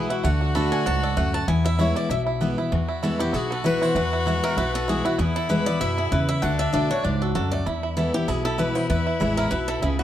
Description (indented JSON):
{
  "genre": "bluegrass",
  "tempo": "194 BPM",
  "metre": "4/4",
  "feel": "swing 55% on 8ths",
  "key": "E mixolydian",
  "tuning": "A4 = 440 Hz",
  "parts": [
    { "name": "bluegrass banjo", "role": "melody", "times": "0.0-10.0 s", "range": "E3 to A4", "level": "-30 LUFS", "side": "right 5 dB", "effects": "none" },
    { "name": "picked swing-style acoustic guitar", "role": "melody", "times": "0.0-10.0 s", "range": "F#4 to B5", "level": "-28 LUFS", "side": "left 2 dB", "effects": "none" },
    { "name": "clear fiddle", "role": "second line", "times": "0.0-10.0 s", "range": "D4 to F#4", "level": "-30 LUFS", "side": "left 2 dB", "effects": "none" },
    { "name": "picked steel-string acoustic guitar", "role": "accompaniment", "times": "0.0-10.0 s", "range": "E2 to F#4", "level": "-25 LUFS", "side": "left 1 dB", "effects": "none" },
    { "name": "upright bass", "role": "bass", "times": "0.0-10.0 s", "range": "A1 to F#2", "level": "-27 LUFS", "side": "right 1 dB", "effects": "none" }
  ],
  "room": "moderate studio reverb, RT60 0.6 s",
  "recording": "dark, warm production",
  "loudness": "-21 LUFS",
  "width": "side -11 dB against mid",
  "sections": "0.0-2.7 A section; 2.7-10.0 A section",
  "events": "none",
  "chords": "0.2 D; 1.5 E; 6.4 D; 7.7 E"
}